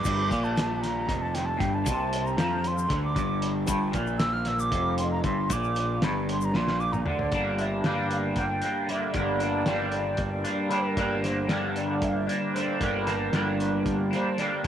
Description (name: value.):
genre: psychedelic rock.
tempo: 230 BPM (eighths).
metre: 7/8.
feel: straight.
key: G dorian.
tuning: A4 = 439 Hz.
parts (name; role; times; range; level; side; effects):
mellow silver concert flute; melody; 0.0-14.6 s; Bb4 to F6; -31 LUFS; right 1 dB; tape echo.
soft string machine; sustained chords; 0.0-14.7 s; G3 to E5; -44 LUFS; right 11 dB; none.
twangy electric guitar; riff; 0.0-14.7 s; F2 to D4; -27 LUFS; equal; rotary speaker, double-tracked left and right.
egg shaker; percussion; 0.0-7.0 s; none; -42 LUFS; left 17 dB; none.
fuzz picked electric bass; bass; 0.1-14.7 s; F1 to F2; -32 LUFS; equal; overdrive.
cloth-damped thuddy drum kit; drums; 0.1-14.7 s; crash cymbal, hi-hat, kick drum, snare drum, toms; -32 LUFS; equal; none.
room: light reverb.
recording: 1960s-style stereo with parts hard left and right.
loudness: -24 LUFS.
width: side -10 dB against mid.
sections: 0.0-7.3 A section; 7.3-14.7 B section.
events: flute solo 0.0-7.3; drum fill 6.5-7.3.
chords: 0.0 Gm.